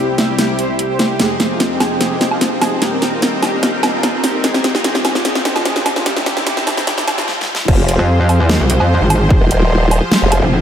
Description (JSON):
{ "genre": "heavy wobble dubstep", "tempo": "148 BPM", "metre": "4/4", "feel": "half-time", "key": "F minor", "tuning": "A4 = 439 Hz", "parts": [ { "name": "soft supersaw", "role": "melody", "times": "0.0-7.3 s", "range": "C4 to E5", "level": "-22 LUFS", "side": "equal", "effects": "diffuse ambient delay" }, { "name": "supersaw chords", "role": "sustained chords", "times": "0.0-10.6 s", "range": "C2 to C5", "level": "-20 LUFS", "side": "equal", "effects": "wide subtle chorus, sidechain pumping, low-pass filter" }, { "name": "dubstep drum kit", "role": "drums", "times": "0.2-10.4 s", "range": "crash cymbal, hi-hat, snare drum, woodblock", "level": "-16 LUFS", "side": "equal", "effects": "none" }, { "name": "riser", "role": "sound effects", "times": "4.0-7.3 s", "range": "none", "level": "-30 LUFS", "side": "left 1 dB", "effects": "none" }, { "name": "formant-sweep wobble bass", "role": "bass", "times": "7.7-10.4 s", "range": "Eb1 to F1", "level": "-13 LUFS", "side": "equal", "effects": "chorus, overdrive" }, { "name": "electronic kick drum", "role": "drums", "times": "7.7-9.4 s", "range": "none", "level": "-14 LUFS", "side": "equal", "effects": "none" }, { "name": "metallic wobble bass", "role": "bass", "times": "8.0-10.6 s", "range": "F1 to F2", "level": "-12 LUFS", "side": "equal", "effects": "chorus, overdrive" } ], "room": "wet lush hall reverb, RT60 2.0 s", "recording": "dreamy mix soaked in reverb, high-pass filter", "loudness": "-12 LUFS", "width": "side -9 dB against mid", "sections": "0.0-7.7 A section; 7.7-10.6 B section", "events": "build-up 0.0-7.7; drum fill 0.0-7.3, 7.3-7.7; filter sweep on supersaw synth 0.0-7.7; filter sweep 0.0-7.7; stop 7.3-7.7; drop 7.7-10.6", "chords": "0.0 C; 1.2 Fm7; 2.8 Eb; 4.4 Fm7; 6.1 C; 7.7 Fmadd9" }